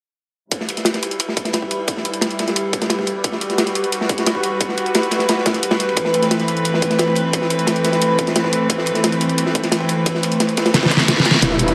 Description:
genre	dark technical drum and bass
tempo	176 BPM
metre	4/4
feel	straight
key	E minor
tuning	A4 = 441 Hz
part	warm studio string section	sustained chords	0.5-11.7 s	E3 to B4	-22 LUFS	equal	sidechain pumping, low-pass filter
part	crunchy breakbeat drum kit	drums	0.5-11.7 s	ride cymbal, snare drum	-24 LUFS	equal	high-pass filter on cymbals, high-pass filter on snare, high-pass filter on room
part	dubstep drum kit	drums	0.5-11.7 s	hi-hat, snare drum	-22 LUFS	equal	none
part	electronic kick drum	drums	0.5-11.5 s	none	-30 LUFS	equal	high-pass filter on kick, high-pass filter on room
part	reverse cymbal and riser	sound effects	10.9-11.7 s	none	-24 LUFS	equal	none
part	metallic wobble bass	bass	11.4-11.7 s	E1	-19 LUFS	equal	distortion, chorus, sidechain pumping
room	moderate lush hall reverb, RT60 1.9 s, small room ambience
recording	none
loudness	-18 LUFS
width	mono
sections	0.5-11.4 A section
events	filter sweep on string section 0.5-11.4; drum fill 10.7-11.4, 11.4-11.7; reverse cymbal 10.9-11.4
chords	0.5 Em; 6.0 Amadd9/E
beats	| 0.52 0.86 1.20 1.54 | 1.88 2.22 2.56 2.90 | 3.24 3.58 3.92 4.27 | 4.61 4.95 5.29 5.63 | 5.97 6.31 6.65 6.99 | 7.33 7.67 8.02 8.36 | 8.70 9.04 9.38 9.72 | 10.06 10.40 10.74 11.08 | 11.43

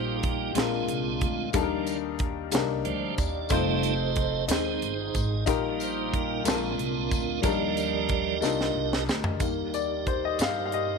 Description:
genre	slow gospel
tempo	61 BPM (dotted quarters)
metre	6/8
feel	straight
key	Eb major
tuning	A4 = 439 Hz
part	warm upright piano	accompaniment	0.0-11.0 s	Bb2 to F5	-29 LUFS	left 13 dB	none
part	tonewheel organ	sustained chords	0.0-11.0 s	F3 to Eb5	-30 LUFS	right 15 dB	slow rotary speaker, overdrive
part	upright bass	bass	0.0-11.0 s	F1 to G2	-34 LUFS	right 1 dB	none
part	crisp fusion drum kit	drums	0.2-10.9 s	hi-hat, kick drum, snare drum, toms	-29 LUFS	right 2 dB	none
part	tambourine	percussion	1.5-10.7 s	none	-40 LUFS	left 14 dB	none
part	dark French horn section	sustained chords	9.4-11.0 s	G3 to G4	-36 LUFS	right 16 dB	none
room	light reverb, studio ambience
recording	1960s-style stereo with parts hard left and right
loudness	-25 LUFS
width	side -4 dB against mid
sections	0.0-9.4 A section; 9.4-11.0 B section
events	tonewheel organ solo 0.0-9.4; drum fill 8.4-9.4; upright piano solo 9.4-11.0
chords	0.0 Eb/Bb; 0.6 Bb7; 1.5 Ebmaj7; 3.5 F7; 4.5 Ab; 5.5 Eb/Bb; 6.5 Bb7; 7.4 Ebmaj7; 9.4 Eb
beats	0.56 | 1.54 2.52 | 3.51 4.49 | 5.47 6.46 | 7.44 8.42 | 9.41 10.39

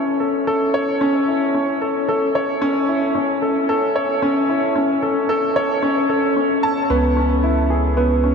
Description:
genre	piano and strings electronica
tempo	112 BPM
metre	4/4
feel	straight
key	unclear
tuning	A4 = 441 Hz
part	warm baby grand piano	riff	0.0-8.3 s	B3 to A5	-16 LUFS	equal	digital delay
part	round analog bass	bass	6.9-8.3 s	C#2	-19 LUFS	right 1 dB	tube saturation
room	wet huge ambient reverb, RT60 9.4 s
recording	dark, warm production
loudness	-16 LUFS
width	side -5 dB against mid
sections	0.0-6.9 A section; 6.9-8.3 B section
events	build-up 0.0-6.9; drop 6.9-8.3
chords	0.0 A/C#; 6.9 C#m7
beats	| 0.47 1.01 1.54 2.08 | 2.62 3.15 3.69 4.22 | 4.76 5.29 5.83 6.37 | 6.90 7.44 7.97

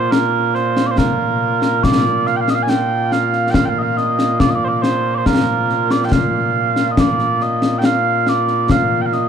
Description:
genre	scottish traditional, Scottish pipe music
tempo	70 BPM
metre	3/4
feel	straight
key	Bb major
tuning	A4 = 439 Hz
part	mellow small bagpipes	melody	0.0-9.3 s	Bb2 to Ab5	-16 LUFS	right 2 dB	none
part	concert snare drum and concert bass drum	drums	0.1-9.2 s	none	-18 LUFS	left 3 dB	none
room	light reverb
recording	dark, warm production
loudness	-14 LUFS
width	side -8 dB against mid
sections	0.0-9.3 A section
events	none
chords	none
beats	0.12 0.98 | 1.84 2.69 3.55 | 4.41 5.26 6.12 | 6.98 7.84 8.69

